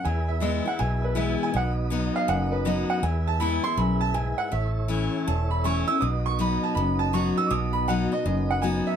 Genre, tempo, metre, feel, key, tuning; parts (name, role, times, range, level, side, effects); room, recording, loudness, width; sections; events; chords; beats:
honky-tonk and classic country; 161 BPM; 4/4; swing 64% on 8ths; E major; A4 = 435 Hz
bright upright piano; second line; 0.0-9.0 s; B4 to E6; -28 LUFS; right 4 dB
mellow tonewheel organ; accompaniment; 0.0-9.0 s; D#4 to E5; -33 LUFS; right 4 dB; slow rotary speaker
picked steel-string acoustic guitar; accompaniment; 0.0-9.0 s; E2 to F#4; -28 LUFS; left 5 dB
vintage muted fingered electric bass; bass; 0.1-8.8 s; E1 to E2; -27 LUFS; equal
light reverb; -23 LUFS; side -8 dB against mid
0.0-9.0 A section
upright piano solo 0.0-9.0
0.1 E; 1.5 B; 3.0 E; 4.5 A; 6.0 B
| 0.05 0.42 0.80 1.17 | 1.54 1.92 2.29 2.66 | 3.04 3.41 3.78 4.16 | 4.53 4.90 5.28 5.65 | 6.02 6.40 6.77 7.14 | 7.51 7.89 8.26 8.63